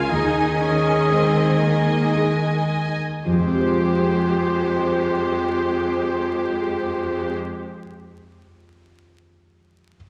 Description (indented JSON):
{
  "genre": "cinematic, emotional film score for orchestra",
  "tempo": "53-63 BPM",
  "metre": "3/4",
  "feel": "rubato",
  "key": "F minor",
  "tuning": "A4 = 440 Hz",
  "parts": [
    { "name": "rich studio violin section", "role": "second line", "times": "0.0-7.3 s", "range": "G4 to Ab5", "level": "-28 LUFS", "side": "equal", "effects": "none" },
    { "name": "dark concert grand piano", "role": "accompaniment", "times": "0.0-10.0 s", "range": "Eb2 to C5", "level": "-31 LUFS", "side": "equal", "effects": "none" },
    { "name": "rich studio viola section", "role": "accompaniment", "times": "0.0-7.3 s", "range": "Ab3 to G4", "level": "-30 LUFS", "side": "equal", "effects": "none" },
    { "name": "concert harp", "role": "arpeggios", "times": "0.0-7.9 s", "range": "Db3 to F5", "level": "-29 LUFS", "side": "equal", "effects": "none" },
    { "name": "rich studio cello section", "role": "bass", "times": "0.0-7.3 s", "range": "F2 to Eb3", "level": "-27 LUFS", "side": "equal", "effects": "none" },
    { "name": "warm clarinet", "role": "second line", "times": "0.1-7.3 s", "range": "F4 to Ab4", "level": "-27 LUFS", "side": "equal", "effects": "none" }
  ],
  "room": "wet concert hall reverb, RT60 2.0 s",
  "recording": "vinyl crackle",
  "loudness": "-21 LUFS",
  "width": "mono",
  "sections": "0.0-3.3 A section; 3.3-6.6 B section",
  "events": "slowing down 0.0-3.3",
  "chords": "0.1 Ebsus4; 3.3 Fmadd9",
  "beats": "| 0.12 1.11 2.15 | 3.26 4.36 5.47"
}